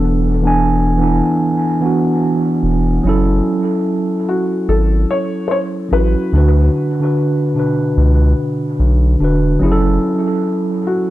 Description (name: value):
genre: lo-fi hip hop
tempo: 73 BPM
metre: 4/4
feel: swing 65% on 16ths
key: F# minor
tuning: A4 = 439 Hz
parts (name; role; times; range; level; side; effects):
- felt-muted upright piano; melody; 0.0-11.1 s; F#4 to C#5; -21 LUFS; left 3 dB; low-pass filter, dub echo
- mellow tine electric piano; accompaniment; 0.0-11.1 s; B2 to G#5; -15 LUFS; right 1 dB; slow stereo tremolo, low-pass filter, dub echo
- round analog bass; bass; 0.0-10.0 s; E1 to D2; -14 LUFS; equal; none
room: light reverb, small room reverb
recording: echo-heavy mix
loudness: -13 LUFS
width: side -15 dB against mid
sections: 0.0-3.0 A section; 3.0-11.1 B section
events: none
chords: 0.0 E7sus4; 3.0 F#m7; 6.3 D6; 9.6 F#m7